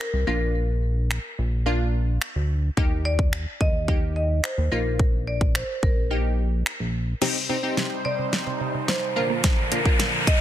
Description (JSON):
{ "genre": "dance-pop", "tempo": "108 BPM", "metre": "4/4", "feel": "straight", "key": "unclear", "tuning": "A4 = 440 Hz", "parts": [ { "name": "marimba with medium hard mallets", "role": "melody", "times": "0.0-10.4 s", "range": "Bb4 to Eb5", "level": "-30 LUFS", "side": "equal", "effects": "digital delay" }, { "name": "wavetable chord stab", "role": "accompaniment", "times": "0.0-10.4 s", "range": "Bb3 to G4", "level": "-29 LUFS", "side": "left 1 dB", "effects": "sidechain pumping" }, { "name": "pop drum kit", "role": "drums", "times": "0.0-10.4 s", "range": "crash cymbal, finger snaps, hi-hat, kick drum, snare drum", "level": "-24 LUFS", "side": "equal", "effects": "soft clipping on snare" }, { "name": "chorused synth bass", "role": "bass", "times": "0.1-7.1 s", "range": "Bb1 to Eb2", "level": "-24 LUFS", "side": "equal", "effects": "sidechain pumping" }, { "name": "soft supersaw", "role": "sustained chords", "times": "7.2-10.4 s", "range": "Bb2 to C5", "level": "-31 LUFS", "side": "right 2 dB", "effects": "sidechain pumping" }, { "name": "mallet-like synth pluck", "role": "arpeggios", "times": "7.2-10.4 s", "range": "Bb2 to Bb3", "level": "-33 LUFS", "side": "right 8 dB", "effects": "chorus, sidechain pumping, digital delay" }, { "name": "riser", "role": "sound effects", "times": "8.3-10.4 s", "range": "none", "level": "-28 LUFS", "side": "equal", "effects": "none" } ], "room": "little or no reverb", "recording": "dense, heavily limited modern master", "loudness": "-21 LUFS", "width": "side -12 dB against mid", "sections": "0.0-7.2 A section; 7.2-10.4 B section", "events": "break 6.1-7.2; build-up 7.2-10.4; drum fill 7.2-10.4; riser 8.3-10.4", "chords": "0.3 Bb; 2.8 Eb; 4.7 Bbsus4; 7.2 Cm; 9.2 Bb" }